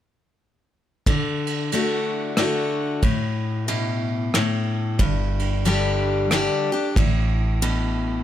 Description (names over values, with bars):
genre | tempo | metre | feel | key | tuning
honky-tonk and classic country | 92 BPM | 3/4 | swing 62% on 8ths | D major | A4 = 441 Hz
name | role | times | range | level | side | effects
picked steel-string acoustic guitar | accompaniment | 1.1-8.2 s | G2 to G4 | -23 LUFS | left 2 dB | none
soft brush drum kit | drums | 1.1-7.8 s | kick drum, ride cymbal, rim click | -25 LUFS | right 2 dB | none
vintage muted fingered electric bass | bass | 5.0-8.2 s | G1 to A1 | -23 LUFS | right 1 dB | none
room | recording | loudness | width
little or no reverb | close, detailed microphones | -20 LUFS | side -11 dB against mid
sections
1.1-8.2 A section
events
none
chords
1.1 D; 5.0 G5; 7.0 N.C.